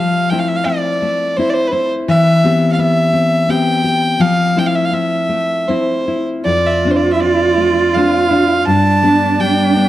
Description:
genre	celtic folk, Celtic slow air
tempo	76-88 BPM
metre	3/4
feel	rubato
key	unclear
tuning	A4 = 440 Hz
part	warm fiddle	melody	0.0-9.9 s	B4 to A5	-16 LUFS	right 1 dB	none
part	nylon-string guitar	accompaniment	0.0-9.9 s	F2 to G4	-15 LUFS	left 2 dB	none
part	dark cello	second line	6.5-9.9 s	D4 to F4	-15 LUFS	right 4 dB	none
room	moderate recital hall reverb, RT60 1.5 s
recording	dark, warm production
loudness	-12 LUFS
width	side -14 dB against mid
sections	0.0-9.9 A section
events	none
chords	0.0 Fmaj7; 2.1 Cmaj7/E; 4.2 Fmaj7; 6.5 F6; 8.7 G

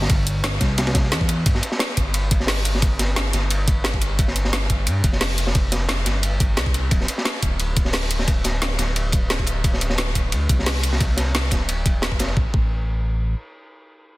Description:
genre	liquid drum and bass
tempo	176 BPM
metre	4/4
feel	swing 53% on 16ths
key	unclear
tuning	A4 = 440 Hz
part	smooth synth bass	bass	0.0-13.3 s	D1 to G2	-23 LUFS	equal	none
part	crunchy breakbeat drum kit	drums	0.0-12.4 s	hi-hat, ride cymbal, snare drum	-26 LUFS	equal	high-pass filter on cymbals, high-pass filter on hats, high-pass filter on snare, high-pass filter on room
part	drum and bass drum kit	drums	0.1-12.3 s	hi-hat, snare drum	-26 LUFS	equal	overdrive
part	electronic kick drum	drums	0.1-12.6 s	none	-21 LUFS	equal	overdrive
room	light reverb, small room ambience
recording	dense, heavily limited modern master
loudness	-18 LUFS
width	side -19 dB against mid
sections	0.0-12.4 A section; 12.4-14.2 B section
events	none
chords	none

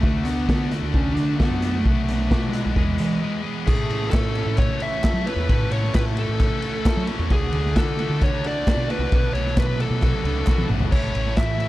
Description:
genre	indie rock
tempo	132 BPM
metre	4/4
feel	straight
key	A major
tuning	A4 = 439 Hz
part	fuzz lead guitar	melody	0.0-11.7 s	G#3 to E5	-27 LUFS	equal	distortion
part	crunchy overdriven guitar	riff	0.0-11.7 s	A2 to A4	-30 LUFS	right 5 dB	lush chorus
part	high-gain distorted guitar	riff	0.0-11.7 s	E2 to A4	-32 LUFS	left 10 dB	distortion
part	fingered electric bass	bass	0.0-11.7 s	A1 to F#3	-25 LUFS	equal	none
part	raw garage drum kit	drums	0.0-11.7 s	crash cymbal, hi-hat, kick drum, ride cymbal, snare drum, toms	-22 LUFS	equal	none
part	combo organ	sustained chords	3.7-11.7 s	A3 to D6	-39 LUFS	right 2 dB	none
part	group handclap	percussion	4.1-11.5 s	none	-40 LUFS	right 4 dB	none
room	studio reverb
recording	dark, warm production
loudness	-19 LUFS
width	side -16 dB against mid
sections	0.0-3.7 A section; 3.7-11.7 B section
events	break 3.2-3.7; drum fill 10.5-10.9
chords	0.0 D; 1.9 Bm7; 2.8 E; 3.7 A; 7.3 D; 9.1 Bm7; 10.9 A

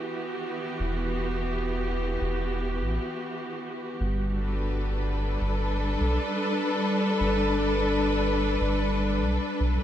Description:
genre	ambient dub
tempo	75 BPM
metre	4/4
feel	straight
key	unclear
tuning	A4 = 440 Hz
part	warm studio string section	sustained chords	0.0-9.8 s	E3 to B4	-27 LUFS	equal	none
part	soft dub sub bass	bass	0.8-9.8 s	E1 to B1	-28 LUFS	equal	tube saturation
room	wet huge ambient reverb, RT60 4.4 s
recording	dreamy mix soaked in reverb, lossy compression artefacts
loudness	-25 LUFS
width	side -11 dB against mid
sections	0.0-9.8 A section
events	none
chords	0.0 Em; 4.0 Gmaj7

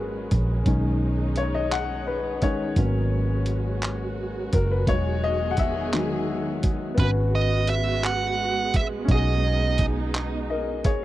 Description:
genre	slow six-eight R&B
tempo	57 BPM (dotted quarters)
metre	6/8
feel	straight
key	G# minor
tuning	A4 = 440 Hz
part	warm baby grand piano	accompaniment	0.0-11.0 s	D#3 to F#5	-28 LUFS	left 4 dB	none
part	warm studio string section	sustained chords	0.0-11.0 s	D#3 to G#4	-32 LUFS	right 3 dB	none
part	vintage muted fingered electric bass	bass	0.0-11.0 s	E1 to B1	-26 LUFS	right 1 dB	none
part	dusty soul sampler-style drum kit	drums	0.3-11.0 s	handclaps, hi-hat, kick drum	-24 LUFS	right 1 dB	none
part	dark smooth lead guitar	melody	7.0-9.8 s	B4 to F#5	-26 LUFS	right 5 dB	overdrive
room	little or no reverb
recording	dry, close 1970s-style studio recording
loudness	-22 LUFS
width	side -15 dB against mid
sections	0.0-7.0 A section; 7.0-11.0 B section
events	grand piano solo 0.0-7.0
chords	0.0 G#m11; 0.7 B69; 2.8 G#m11; 4.9 Emaj9; 7.0 G#m11; 9.1 B69

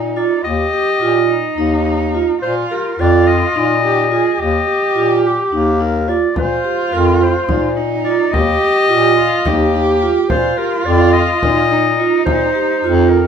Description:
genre	contemporary instrumental, chamber music in an uneven meter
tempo	213 BPM (eighths)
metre	7/8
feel	straight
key	Eb major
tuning	A4 = 440 Hz
part	dark cello	second line	0.0-13.3 s	Eb4 to Ab4	-19 LUFS	right 2 dB	none
part	vibraphone with medium hard mallets	arpeggios	0.0-13.1 s	Eb4 to G4	-18 LUFS	right 6 dB	none
part	clear bass clarinet	bass	0.0-13.3 s	Eb2 to Bb2	-18 LUFS	left 3 dB	none
part	warm clarinet	melody	0.2-13.3 s	G4 to Eb5	-17 LUFS	left 2 dB	none
part	frame drum	percussion	6.4-13.2 s	none	-20 LUFS	equal	none
room	moderate studio reverb, RT60 0.6 s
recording	heard from further back in the room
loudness	-12 LUFS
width	side -7 dB against mid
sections	0.0-13.3 A section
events	none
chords	0.5 Eb; 2.4 Bbsus4; 4.4 Eb; 6.4 Bbsus4; 8.3 Eb; 10.3 Bbsus4

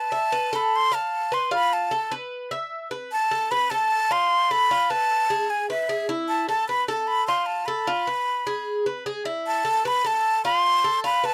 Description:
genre	latin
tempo	151 BPM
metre	4/4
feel	straight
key	A minor from 3.1 s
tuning	A4 = 440 Hz
part	breathy jazz flute	melody	0.0-11.3 s	E5 to C6	-24 LUFS	equal	none
part	Cuban tres	arpeggios	0.0-11.3 s	E4 to F5	-30 LUFS	equal	none
room	light reverb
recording	dry, close 1970s-style studio recording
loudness	-24 LUFS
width	mono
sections	0.0-3.1 A section; 3.1-11.3 B section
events	none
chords	0.0 Asus2; 0.7 F; 2.3 E5; 3.1 Asus2; 3.9 F; 4.7 Fdim; 5.5 E; 6.3 Asus2; 7.1 F; 7.9 Fdim; 8.7 E; 9.5 Asus2; 10.2 F

